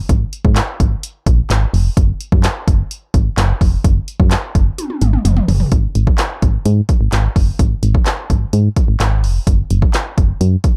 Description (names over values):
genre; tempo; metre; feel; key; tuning
dance-pop; 128 BPM; 4/4; straight; unclear; A4 = 440 Hz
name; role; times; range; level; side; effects
solid FM bass; bass; 0.1-10.6 s; F1 to Ab2; -17 LUFS; equal; sidechain pumping
deep house drum kit; drums; 0.1-10.8 s; handclaps, hi-hat, kick drum, snare drum, toms; -17 LUFS; equal; none
room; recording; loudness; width
little or no reverb; dark, warm production; -15 LUFS; mono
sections
0.0-5.7 A section; 5.7-10.8 B section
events
drum fill 4.8-5.7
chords
none